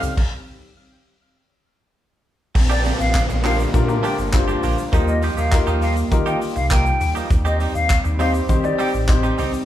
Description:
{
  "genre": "dance-pop",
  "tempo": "101 BPM",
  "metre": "4/4",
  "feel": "straight",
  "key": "unclear",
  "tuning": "A4 = 440 Hz",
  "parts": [
    { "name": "analog pluck", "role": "melody", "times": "0.0-1.9 s", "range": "F5", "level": "-30 LUFS", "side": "right 1 dB", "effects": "chorus" },
    { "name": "warm grand piano", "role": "accompaniment", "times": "0.0-9.6 s", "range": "C4 to D5", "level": "-24 LUFS", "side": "left 4 dB", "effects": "none" },
    { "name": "lush unison pad", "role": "sustained chords", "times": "0.0-9.7 s", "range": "D3 to G4", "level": "-29 LUFS", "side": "right 1 dB", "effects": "chorus" },
    { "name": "direct-recorded clean electric guitar", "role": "riff", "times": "0.0-9.6 s", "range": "F3 to G4", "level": "-27 LUFS", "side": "right 5 dB", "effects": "none" },
    { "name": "sub bass with octave", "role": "bass", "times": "0.0-9.5 s", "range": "G1 to Eb3", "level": "-22 LUFS", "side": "equal", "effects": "none" },
    { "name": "damped 70s drum kit", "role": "drums", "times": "0.0-9.7 s", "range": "crash cymbal, handclaps, hi-hat, kick drum, shaker", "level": "-21 LUFS", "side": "equal", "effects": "none" },
    { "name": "downlifter", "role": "sound effects", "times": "2.6-7.3 s", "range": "none", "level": "-29 LUFS", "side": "equal", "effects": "none" },
    { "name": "hollow concert flute", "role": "melody", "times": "2.7-8.9 s", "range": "D5 to G5", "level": "-25 LUFS", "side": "left 2 dB", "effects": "none" }
  ],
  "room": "moderate large studio reverb, RT60 0.9 s",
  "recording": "band playing live in one room",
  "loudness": "-16 LUFS",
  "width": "side -12 dB against mid",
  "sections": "0.0-2.6 A section; 2.6-9.7 B section",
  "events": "build-up 0.0-2.6; drum fill 0.0; stop 0.2-2.6; drop 2.6-9.7",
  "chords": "0.2 N.C.; 2.6 Bb6; 4.9 Ebadd9; 7.3 Cm/Eb",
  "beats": "| 0.18 0.77 1.36 1.96 | 2.55 3.15 3.74 4.33 | 4.93 5.52 6.12 6.71 | 7.30 7.90 8.49 9.09"
}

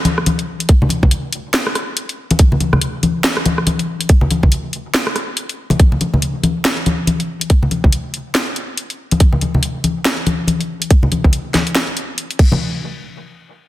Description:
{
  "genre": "dubstep",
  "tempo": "141 BPM",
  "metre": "4/4",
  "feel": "swing 59% on 16ths, half-time",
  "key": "none",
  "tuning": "none",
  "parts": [
    { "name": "congas", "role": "percussion", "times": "0.0-12.6 s", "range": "none", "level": "-17 LUFS", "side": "left 1 dB", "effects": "dub echo" },
    { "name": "garage drum kit", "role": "drums", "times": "0.1-12.5 s", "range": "crash cymbal, hi-hat, rim click, snare drum", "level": "-18 LUFS", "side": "equal", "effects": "none" },
    { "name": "electronic kick drum", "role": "drums", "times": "0.7-12.5 s", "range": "none", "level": "-10 LUFS", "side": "equal", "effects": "none" }
  ],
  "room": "moderate echo chamber reverb, RT60 1.5 s, digital ambience",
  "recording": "dense, heavily limited modern master",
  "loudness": "-14 LUFS",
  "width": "side -15 dB against mid",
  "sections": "0.0-12.6 A section; 12.6-13.7 B section",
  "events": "none",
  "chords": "none",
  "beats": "0.26 | 0.69 1.11 1.54 1.97 | 2.39 2.82 3.24 3.67 | 4.09 4.52 4.95 5.37 | 5.80 6.22 6.65 7.07 | 7.50 7.92 8.35 8.78 | 9.20 9.63 10.05 10.48 | 10.90 11.33 11.75 12.18"
}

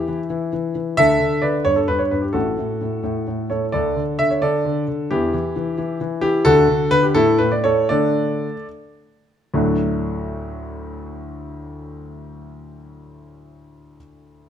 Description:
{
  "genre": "classical-period piano sonatina",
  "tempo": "71-91 BPM (dotted quarters)",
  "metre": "6/8",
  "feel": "rubato",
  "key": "D major",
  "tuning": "A4 = 441 Hz",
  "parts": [
    { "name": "warm grand piano", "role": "solo", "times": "0.0-14.5 s", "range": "A1 to E5", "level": "-18 LUFS", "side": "equal", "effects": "none" }
  ],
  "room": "moderate recital hall reverb, RT60 1.3 s",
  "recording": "close, detailed microphones",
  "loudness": "-17 LUFS",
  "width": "side -9 dB against mid",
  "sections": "0.0-9.5 A section; 9.5-12.8 B section",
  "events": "slowing down 5.8-9.5",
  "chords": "0.0 N.C.; 1.0 D5; 1.7 N.C.; 2.4 F#m/A; 3.7 D5; 5.1 N.C.; 6.5 D; 7.2 A5; 7.9 D5; 9.5 D",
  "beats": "0.32 | 0.98 1.67 | 2.35 3.05 | 3.75 4.43 | 5.11 5.78 | 6.46 7.16 | 7.91 8.70 | 9.53 10.35 | 11.16 11.97"
}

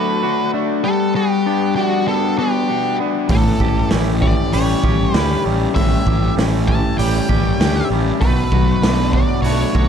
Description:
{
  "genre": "rock, shoegaze and dream pop",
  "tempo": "98 BPM",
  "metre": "4/4",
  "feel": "straight",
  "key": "A mixolydian",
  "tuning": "A4 = 442 Hz",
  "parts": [
    { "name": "octave-fuzz lead guitar", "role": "melody", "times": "0.0-9.9 s", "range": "F#4 to A5", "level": "-23 LUFS", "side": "equal", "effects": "distortion, analog delay" },
    { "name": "twangy electric guitar", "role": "arpeggios", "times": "0.0-9.9 s", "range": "E3 to G4", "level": "-30 LUFS", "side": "right 11 dB", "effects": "analog chorus, analog delay" },
    { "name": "overdriven semi-hollow guitar", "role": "riff", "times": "0.0-9.9 s", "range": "A2 to G4", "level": "-20 LUFS", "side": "left 12 dB", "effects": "wide subtle chorus" },
    { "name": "twangy electric guitar", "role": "riff", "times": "0.0-9.9 s", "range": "A2 to G4", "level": "-23 LUFS", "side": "right 14 dB", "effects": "reverse reverb" },
    { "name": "fuzz fingered electric bass", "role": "bass", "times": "3.3-9.9 s", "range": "A1 to D2", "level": "-20 LUFS", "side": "right 1 dB", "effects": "overdrive" },
    { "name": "raw garage drum kit", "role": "drums", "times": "3.3-9.9 s", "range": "hi-hat, kick drum, snare drum", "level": "-18 LUFS", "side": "equal", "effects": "none" }
  ],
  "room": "small room ambience",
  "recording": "dark, warm production",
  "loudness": "-14 LUFS",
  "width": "side -8 dB against mid",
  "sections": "0.0-9.9 A section",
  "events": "none",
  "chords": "0.0 Bm7; 0.8 Gmaj7; 3.3 A7; 8.2 Bm7",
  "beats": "0.23 | 0.84 1.46 2.07 2.68 | 3.30 3.91 4.53 5.14 | 5.75 6.37 6.98 7.60 | 8.21 8.83 9.44"
}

